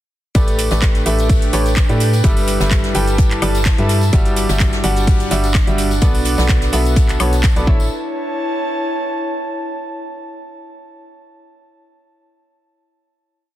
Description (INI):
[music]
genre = piano house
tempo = 127 BPM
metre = 4/4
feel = swing 54% on 16ths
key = A mixolydian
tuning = A4 = 440 Hz
[part]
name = bright concert grand piano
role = riff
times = 0.3-7.9 s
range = G3 to G5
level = -20 LUFS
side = equal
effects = sidechain pumping, tape echo
[part]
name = organ-like FM bass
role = bass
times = 0.3-7.9 s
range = G1 to A2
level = -18 LUFS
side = equal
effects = sidechain pumping
[part]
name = electronic kick drum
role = drums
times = 0.3-7.8 s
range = none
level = -14 LUFS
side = equal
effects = none
[part]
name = house drum kit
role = drums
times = 0.3-7.7 s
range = handclaps, hi-hat, shaker, woodblock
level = -24 LUFS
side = right 1 dB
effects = none
[part]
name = jazz brush drum kit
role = drums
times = 0.3-7.6 s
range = hi-hat, snare drum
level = -30 LUFS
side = left 2 dB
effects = high-pass filter on hats, high-pass filter on snare, high-pass filter on room
[part]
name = tambourine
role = percussion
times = 0.3-7.9 s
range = none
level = -32 LUFS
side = left 2 dB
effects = none
[part]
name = airy breathy pad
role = texture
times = 0.6-9.8 s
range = G3 to A5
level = -24 LUFS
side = right 2 dB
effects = chorus, sidechain pumping
[sound]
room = little or no reverb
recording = dense, heavily limited modern master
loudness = -13 LUFS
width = side -14 dB against mid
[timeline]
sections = 0.3-7.9 drop; 7.9-9.8 final note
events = drop 0.3-7.9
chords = 0.3 A9sus4; 2.2 G69; 4.1 Em9/G; 6.0 Bm7; 7.7 A